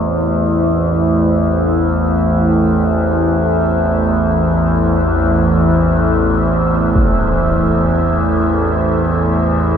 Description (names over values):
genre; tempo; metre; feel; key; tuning
dark ambient drone; free time; none; none; unclear; A4 = 438 Hz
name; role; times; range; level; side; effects
sweeping resonant pad; sustained chords; 0.0-9.8 s; A3 to E5; -17 LUFS; equal; chorus
overtone-sweeping drone; drone; 0.0-9.8 s; A1 to E2; -14 LUFS; equal; chorus, built-in reverb
impact; percussion; 7.0-7.2 s; none; -20 LUFS; equal; low-pass filter on sfx
room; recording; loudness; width
wet huge ambient reverb, RT60 8.6 s; dark, warm production; -12 LUFS; side -8 dB against mid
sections
0.0-9.8 A section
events
none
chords
0.0 Am